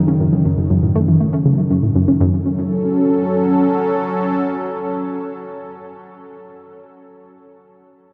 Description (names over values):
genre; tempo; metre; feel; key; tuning
ambient, sequencer-driven space music; 120 BPM; 4/4; straight; F# dorian; A4 = 440 Hz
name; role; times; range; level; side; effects
sweeping resonant pad; sustained chords; 0.0-6.0 s; F#2 to A4; -20 LUFS; equal; chorus
analog pluck; riff; 0.0-2.4 s; F#2 to C#4; -20 LUFS; equal; chorus, tape echo
room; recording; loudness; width
wet huge ambient reverb, RT60 7.0 s; dark, warm production; -17 LUFS; mono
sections
0.0-2.2 A section; 2.2-6.2 B section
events
none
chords
0.0 F#m